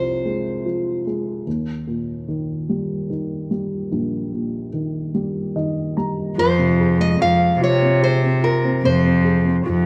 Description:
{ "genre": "acoustic folk-pop ballad", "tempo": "49 BPM (dotted quarters)", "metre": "6/8", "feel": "straight", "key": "F minor", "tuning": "A4 = 440 Hz", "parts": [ { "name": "picked old ladder-braced acoustic guitar", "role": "melody", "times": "0.0-1.0, 6.4-9.9 s", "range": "Bb4 to F5", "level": "-24 LUFS", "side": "equal", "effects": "none" }, { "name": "dark upright piano", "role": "accompaniment", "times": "0.0-9.9 s", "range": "Bb1 to Bb5", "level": "-25 LUFS", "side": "equal", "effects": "none" }, { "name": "warm cello", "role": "bass", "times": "6.4-9.9 s", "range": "F2 to C3", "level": "-20 LUFS", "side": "equal", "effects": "none" } ], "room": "moderate echo chamber reverb, RT60 1.7 s, small room ambience", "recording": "none", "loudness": "-20 LUFS", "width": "mono", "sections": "0.0-6.4 A section; 6.4-9.9 B section", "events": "none", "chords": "0.0 Fm; 1.5 Eb; 6.4 Fm" }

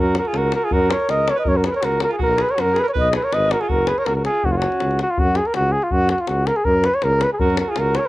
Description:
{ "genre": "balkan folk, Balkan brass band", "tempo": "161 BPM", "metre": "2/4", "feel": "straight", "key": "F# major", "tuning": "A4 = 438 Hz", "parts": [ { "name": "mellow flugelhorn", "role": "melody", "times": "0.0-8.1 s", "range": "E#4 to D#5", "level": "-19 LUFS", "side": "equal", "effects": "cassette tape" }, { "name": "clear alto saxophone", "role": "second line", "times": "0.0-5.0, 7.4-8.1 s", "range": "C#4 to B4", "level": "-26 LUFS", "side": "right 6 dB", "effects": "cassette tape" }, { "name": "mellow tuba", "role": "bass", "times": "0.0-8.0 s", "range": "F#1 to F#2", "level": "-22 LUFS", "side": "equal", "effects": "tube saturation" }, { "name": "davul", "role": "percussion", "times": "0.1-8.0 s", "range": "none", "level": "-26 LUFS", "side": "left 3 dB", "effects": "none" } ], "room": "light reverb", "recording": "home recording on cassette", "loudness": "-16 LUFS", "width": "side -17 dB against mid", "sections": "0.0-5.2 A section; 5.2-8.1 A section", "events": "none", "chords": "0.0 F#5; 2.2 B5; 3.7 F#5" }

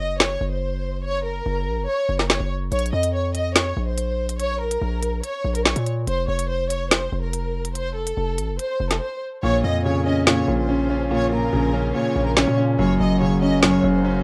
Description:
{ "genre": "hip hop, drill", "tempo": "143 BPM", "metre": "4/4", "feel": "half-time", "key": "Bb minor", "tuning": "A4 = 440 Hz", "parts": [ { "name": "dark studio violin section", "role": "melody", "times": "0.0-14.2 s", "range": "A4 to Eb5", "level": "-28 LUFS", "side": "equal", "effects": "none" }, { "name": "distorted 808-style bass", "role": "bass", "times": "0.0-14.2 s", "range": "F1 to Bb2", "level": "-28 LUFS", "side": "equal", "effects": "distortion" }, { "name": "drill drum kit", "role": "drums", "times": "0.2-13.7 s", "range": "hi-hat, snare drum", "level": "-22 LUFS", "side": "equal", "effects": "vintage 12-bit sampler grit" }, { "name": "clear concert grand piano", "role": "accompaniment", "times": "9.4-14.2 s", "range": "Gb2 to Db4", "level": "-22 LUFS", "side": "equal", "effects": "none" }, { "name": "sweeping resonant pad", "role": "sustained chords", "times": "9.4-14.2 s", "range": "Db3 to Gb4", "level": "-33 LUFS", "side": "equal", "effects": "chorus" } ], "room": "moderate studio ambience, RT60 0.5 s", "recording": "rough home demo mix", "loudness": "-22 LUFS", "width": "mono", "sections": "0.0-14.2 A section", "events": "break 0.0-2.7, 9.0-9.4; hi-hats muted 9.4-14.2", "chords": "0.0 Gb; 2.7 Bb5; 6.1 F; 9.4 Bbm; 12.8 Gb" }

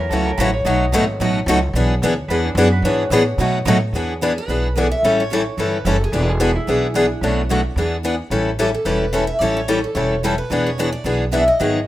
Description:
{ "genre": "acoustic string swing (jazz manouche)", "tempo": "219 BPM", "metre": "4/4", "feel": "swing 56% on 8ths", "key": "E mixolydian", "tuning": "A4 = 440 Hz", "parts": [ { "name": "Celtic harp", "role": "second line", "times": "0.0-10.5 s", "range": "B3 to E5", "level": "-27 LUFS", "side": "equal", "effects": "none" }, { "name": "upright bass", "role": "bass", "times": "0.0-11.9 s", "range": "E1 to B2", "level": "-22 LUFS", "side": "equal", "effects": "none" }, { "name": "picked steel-string acoustic guitar", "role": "accompaniment", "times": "0.1-11.8 s", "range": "B2 to A4", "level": "-19 LUFS", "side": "left 2 dB", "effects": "none" }, { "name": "picked steel-string acoustic guitar", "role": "accompaniment", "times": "0.1-11.8 s", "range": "B2 to C#5", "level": "-26 LUFS", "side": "right 8 dB", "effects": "none" }, { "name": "picked steel-string acoustic guitar", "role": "melody", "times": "4.2-11.9 s", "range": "G4 to E5", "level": "-22 LUFS", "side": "equal", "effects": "plate reverb" } ], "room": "moderate studio reverb, RT60 0.6 s", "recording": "rough home demo mix", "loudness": "-16 LUFS", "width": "side -14 dB against mid", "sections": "0.0-3.9 A section; 3.9-11.9 B section", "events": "none", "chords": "0.0 F#m7; 0.7 B7; 1.7 E7; 3.4 B7; 3.9 E7; 5.0 A7; 6.1 E7; 7.2 Bm7; 7.8 E7; 8.3 A7; 10.5 E7" }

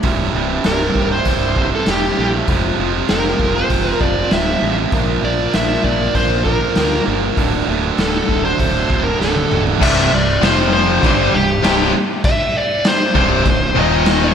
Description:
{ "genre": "quiet-loud alternative rock", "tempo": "98 BPM", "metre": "4/4", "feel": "straight", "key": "C mixolydian", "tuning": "A4 = 441 Hz", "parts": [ { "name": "electric guitar through a small old amp", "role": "arpeggios", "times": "0.0-9.8 s", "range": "C2 to Bb4", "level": "-24 LUFS", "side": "left 1 dB", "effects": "lush chorus, slapback echo" }, { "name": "heavy high-gain guitar", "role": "riff", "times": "0.0-14.3 s", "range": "C2 to Bb3", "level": "-20 LUFS", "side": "right 9 dB", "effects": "distortion, slapback echo" }, { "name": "fuzz fingered electric bass", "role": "bass", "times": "0.0-14.3 s", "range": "C1 to D2", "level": "-22 LUFS", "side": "equal", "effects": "overdrive" }, { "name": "raw garage drum kit", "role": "drums", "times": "0.0-14.2 s", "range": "crash cymbal, hi-hat, kick drum, snare drum, toms", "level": "-19 LUFS", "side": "equal", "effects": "none" }, { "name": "dark smooth lead guitar", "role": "melody", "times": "0.7-14.3 s", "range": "G4 to E5", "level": "-19 LUFS", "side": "equal", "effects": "overdrive, slapback echo, analog delay" }, { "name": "distorted electric guitar", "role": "riff", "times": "9.8-14.3 s", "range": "C2 to G3", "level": "-19 LUFS", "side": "left 11 dB", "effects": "overdrive" } ], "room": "moderate lush hall reverb, RT60 2.7 s", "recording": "big arena sound", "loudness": "-13 LUFS", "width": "side -8 dB against mid", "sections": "0.0-9.8 A section; 9.8-14.3 B section", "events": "drum fill 9.2-9.8", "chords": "0.0 C; 2.5 Fm; 4.9 Bb; 7.4 D; 9.8 C; 10.4 F5; 11.0 C5; 13.8 Eb5" }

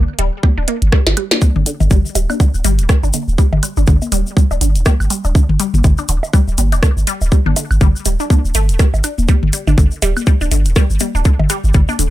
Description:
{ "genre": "minimal techno", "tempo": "122 BPM", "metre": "4/4", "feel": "swing 58% on 16ths", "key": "unclear", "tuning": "A4 = 443 Hz", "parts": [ { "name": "punchy sub bass", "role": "bass", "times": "0.0-12.1 s", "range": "D1 to G1", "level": "-15 LUFS", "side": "equal", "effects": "sidechain pumping" }, { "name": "resonant blip pluck", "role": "riff", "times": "0.2-12.0 s", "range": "D3 to D4", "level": "-22 LUFS", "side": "equal", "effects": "phaser, sidechain pumping, digital delay" }, { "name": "minimal click drum kit", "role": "drums", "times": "0.2-12.1 s", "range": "hi-hat, rim click, snare drum", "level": "-18 LUFS", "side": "equal", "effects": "overdrive" }, { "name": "electronic bongos, toms and woodblock", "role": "percussion", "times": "0.2-12.0 s", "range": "none", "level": "-22 LUFS", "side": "left 3 dB", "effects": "digital delay" }, { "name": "electronic kick drum", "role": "drums", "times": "0.4-11.9 s", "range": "none", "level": "-11 LUFS", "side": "equal", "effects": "overdrive" }, { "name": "tube shaker", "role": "percussion", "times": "1.4-12.1 s", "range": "none", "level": "-25 LUFS", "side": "left 4 dB", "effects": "none" } ], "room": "little or no reverb", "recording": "none", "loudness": "-12 LUFS", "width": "side -15 dB against mid", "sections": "0.0-12.1 A section", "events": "drum fill 1.0-1.4", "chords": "0.0 G5" }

